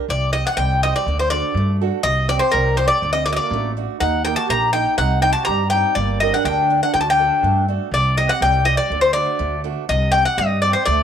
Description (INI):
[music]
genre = greek folk, Greek bouzouki band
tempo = 122 BPM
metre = 2/4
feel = straight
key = unclear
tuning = A4 = 439 Hz
[part]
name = picked old ladder-braced acoustic guitar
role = accompaniment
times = 0.0-11.0 s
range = C3 to C5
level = -26 LUFS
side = right 15 dB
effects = none
[part]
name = Greek bouzouki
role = melody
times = 0.1-11.0 s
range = Bb4 to Bb5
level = -18 LUFS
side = left 3 dB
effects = none
[part]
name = upright bass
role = bass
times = 0.1-11.0 s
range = G1 to G2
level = -22 LUFS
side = equal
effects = none
[part]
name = accordion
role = second line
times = 3.1-7.7, 10.9-11.0 s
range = A3 to G4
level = -26 LUFS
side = right 15 dB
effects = none
[sound]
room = light reverb, small room ambience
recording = 1960s-style stereo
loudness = -16 LUFS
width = side -8 dB against mid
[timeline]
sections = 0.1-7.9 A section; 7.9-11.0 A section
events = none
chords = 0.1 Cm; 1.1 D; 2.0 Cm; 3.0 D; 4.0 Eb; 5.0 Cm; 6.0 Gm; 6.9 D; 7.9 Cm; 8.9 D; 9.9 Cm